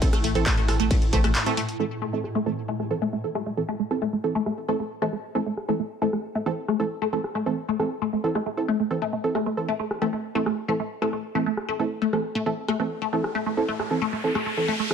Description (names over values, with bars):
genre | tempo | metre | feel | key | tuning
driving peak-time techno | 135 BPM | 4/4 | straight | A minor | A4 = 440 Hz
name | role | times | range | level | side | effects
filtered dub chord stab | stabs | 0.0-14.9 s | E3 to A4 | -28 LUFS | right 3 dB | chorus, sidechain pumping, ping-pong delay
swarming drone | drone | 0.0-1.8 s | A2 | -34 LUFS | equal | built-in reverb, sidechain pumping
electronic kick drum | drums | 0.0-1.2 s | none | -22 LUFS | equal | distortion
techno drum kit | drums | 0.0-14.9 s | handclaps, hi-hat, ride cymbal, rim click | -31 LUFS | equal | low-pass filter on snare, sidechain pumping on hats, low-pass filter on hats, sidechain pumping on cymbals, low-pass filter on cymbals, low-pass filter on room
resonant blip pluck | riff | 0.1-14.8 s | A3 | -27 LUFS | left 1 dB | phaser, lush chorus, sidechain pumping, ping-pong delay
saturated sub bass | bass | 0.1-1.3 s | A1 | -26 LUFS | equal | tube saturation, sidechain pumping, low-pass filter
riser | sound effects | 13.1-14.9 s | none | -32 LUFS | left 1 dB | none
room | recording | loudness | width
light reverb, digital ambience | none | -23 LUFS | side -7 dB against mid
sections
0.0-1.8 A section; 1.8-14.9 B section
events
drop 0.0-1.8; break 1.4-1.8; filter sweep on synth arpeggio sound 1.8-14.9; riser 13.1-14.9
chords
0.0 Am